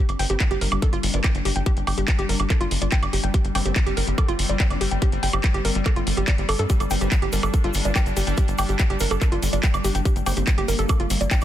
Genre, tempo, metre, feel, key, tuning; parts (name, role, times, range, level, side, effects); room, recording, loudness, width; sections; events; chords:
psychedelic trance; 143 BPM; 4/4; straight; G minor; A4 = 435 Hz
pulsing gated texture; sustained chords; 0.0-11.4 s; G3 to D4; -30 LUFS; left 3 dB; chorus, built-in reverb, sidechain pumping
woody wave-folded pluck; riff; 0.0-11.4 s; F4 to G5; -28 LUFS; moving between left 4 dB and right 7 dB; chorus, auto-pan, sidechain pumping, digital delay
tight sequencer bass; bass; 0.1-11.4 s; G1 to G2; -24 LUFS; equal; tube saturation
drum and bass drum kit; drums; 0.1-11.4 s; handclaps, hi-hat, woodblock; -27 LUFS; right 2 dB
formant-sweep wobble bass; second line; 0.2-11.4 s; Bb3 to D4; -39 LUFS; right 4 dB
electronic kick drum; drums; 0.4-11.4 s; -20 LUFS; equal
tube shaker; percussion; 6.7-11.4 s; -38 LUFS; left 4 dB
digital ambience; dense, heavily limited modern master; -19 LUFS; side -12 dB against mid
0.0-11.4 A section
0.0 G5